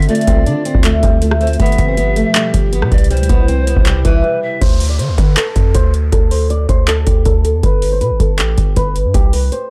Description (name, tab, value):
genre	hip hop, trap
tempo	159 BPM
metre	4/4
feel	half-time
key	D dorian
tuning	A4 = 442 Hz
part	breathy bright large pan pipes	second line	0.0-4.6 s	B4 to E5	-26 LUFS	equal	tape echo
part	airy breathy pad	sustained chords	0.0-4.6 s	B2 to G4	-27 LUFS	equal	chorus
part	hard-hitting 808-style bass	bass	0.0-9.5 s	G1 to D3	-18 LUFS	equal	none
part	booming analog drum machine	drums	0.0-9.6 s	handclaps, hi-hat, kick drum, rim click	-16 LUFS	equal	none
part	flamenco guitar	melody	0.1-9.7 s	E3 to D5	-20 LUFS	equal	low-pass filter
part	downlifter	sound effects	4.6-7.6 s	none	-34 LUFS	equal	none
room	little or no reverb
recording	dark, warm production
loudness	-14 LUFS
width	mono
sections	0.0-4.6 A section; 4.6-9.7 B section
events	break 4.2-4.6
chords	0.0 Dm7; 1.6 G7; 3.1 Cmaj7; 4.6 D5; 7.6 G; 9.1 C5